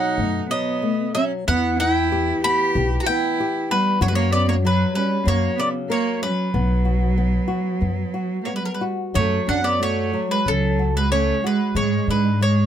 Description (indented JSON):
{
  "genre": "fado-style ballad",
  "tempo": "93 BPM",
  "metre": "4/4",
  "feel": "rubato",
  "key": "F# minor from 9.2 s",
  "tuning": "A4 = 440 Hz",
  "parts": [
    { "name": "mandolin", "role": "melody", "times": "0.0-12.7 s", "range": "A4 to B5", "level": "-24 LUFS", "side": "equal", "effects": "none" },
    { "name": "clear cello", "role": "second line", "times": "0.0-12.7 s", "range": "F#3 to G4", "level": "-23 LUFS", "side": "right 5 dB", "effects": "none" },
    { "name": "nylon-string guitar", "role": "accompaniment", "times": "0.0-12.7 s", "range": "B2 to A#4", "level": "-26 LUFS", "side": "left 5 dB", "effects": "none" },
    { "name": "upright bass", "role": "bass", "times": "0.2-12.7 s", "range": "B1 to G#2", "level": "-22 LUFS", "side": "left 1 dB", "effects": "none" }
  ],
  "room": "little or no reverb",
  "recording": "close, detailed microphones",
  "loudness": "-18 LUFS",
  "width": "side -10 dB against mid",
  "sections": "0.0-9.2 A section; 9.2-12.7 B section",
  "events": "none",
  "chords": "0.0 B7; 1.5 Em; 4.0 F#5; 5.3 F#; 6.5 B5; 9.2 F#5; 11.8 G#dim"
}